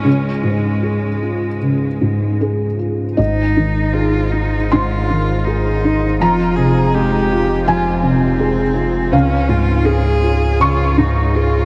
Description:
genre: neoclassical piano and strings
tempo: 75-83 BPM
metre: 4/4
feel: rubato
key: Ab major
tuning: A4 = 440 Hz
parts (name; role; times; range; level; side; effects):
- rich cello; second line; 0.0-11.7 s; Ab3 to Ab4; -24 LUFS; equal; tape echo
- felt-muted upright piano; accompaniment; 0.0-11.7 s; Db2 to Db6; -18 LUFS; equal; analog chorus
- deep dark ambient pad; sustained chords; 4.2-11.7 s; Ab3 to Db5; -31 LUFS; equal; none
- punchy sub bass; bass; 3.2-11.7 s; F1 to Db2; -23 LUFS; equal; none
room: moderate huge ambient reverb, RT60 6.4 s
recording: dreamy mix soaked in reverb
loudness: -16 LUFS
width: mono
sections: 0.0-3.2 A section; 3.2-11.7 A section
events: none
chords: 0.0 Db; 3.2 Ab; 6.2 Fm; 9.1 Db

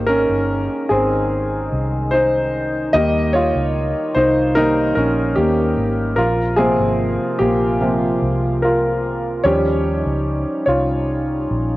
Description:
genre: pop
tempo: 74 BPM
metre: 4/4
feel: straight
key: unclear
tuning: A4 = 440 Hz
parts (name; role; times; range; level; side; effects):
- clear concert grand piano; accompaniment; 0.0-11.8 s; C3 to Eb5; -17 LUFS; equal; none
- mellow French horn section; sustained chords; 0.0-11.8 s; C3 to F4; -26 LUFS; equal; none
- vintage muted fingered electric bass; bass; 0.0-11.8 s; G1 to Eb2; -23 LUFS; equal; none
room: moderate lush hall reverb, RT60 2.4 s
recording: home recording on cassette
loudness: -16 LUFS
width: side -17 dB against mid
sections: 0.0-11.8 A section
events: grand piano solo 0.0-11.8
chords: 0.0 Abmaj7; 2.9 Eb; 6.2 Bbsus2; 9.4 Eb7

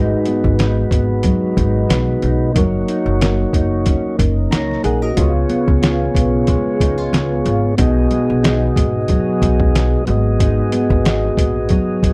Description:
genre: indie pop, bedroom pop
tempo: 92 BPM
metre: 4/4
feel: swing 55% on 16ths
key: unclear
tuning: A4 = 440 Hz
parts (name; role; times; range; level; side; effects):
- mellow tonewheel organ; accompaniment; 0.0-12.1 s; G#3 to A#5; -22 LUFS; equal; slow rotary speaker, cassette tape
- nylon-string guitar; accompaniment; 0.0-12.1 s; G#2 to A#4; -23 LUFS; equal; analog chorus, warbly pitch drift
- upright bass; bass; 0.0-12.1 s; F#1 to C#2; -21 LUFS; equal; none
- trip hop sampler-style drum kit; drums; 0.3-12.1 s; hi-hat, kick drum, snare drum; -20 LUFS; equal; overdrive
room: little or no reverb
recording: dry, close 1970s-style studio recording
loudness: -16 LUFS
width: mono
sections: 0.0-12.1 A section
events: none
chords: 0.0 G#m7; 2.6 F#6; 5.2 C#7; 7.8 B6; 10.1 G#m7

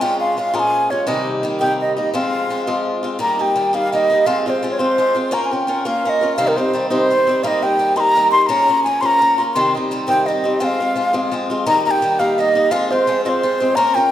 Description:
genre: celtic folk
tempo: 113 BPM (dotted quarters)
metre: 6/8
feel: straight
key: F minor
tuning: A4 = 440 Hz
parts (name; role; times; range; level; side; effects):
- mellow wooden flute; melody; 0.0-14.1 s; Bb4 to C6; -16 LUFS; equal; none
- picked swing-style acoustic guitar; accompaniment; 0.0-14.1 s; Bb2 to Bb4; -20 LUFS; left 1 dB; none
room: wet recital hall reverb, RT60 1.9 s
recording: none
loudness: -15 LUFS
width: side -12 dB against mid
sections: 0.0-3.2 A section; 3.2-11.7 B section; 11.7-14.1 B section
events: none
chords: 0.0 Bbm7; 1.1 Cm7; 2.1 Fm; 3.2 Eb; 4.3 Fm; 5.3 Bbm; 6.4 Cm; 7.4 Eb; 8.5 Bbm/Db; 9.5 Cm; 10.6 Fm; 11.7 Eb; 12.7 Fm

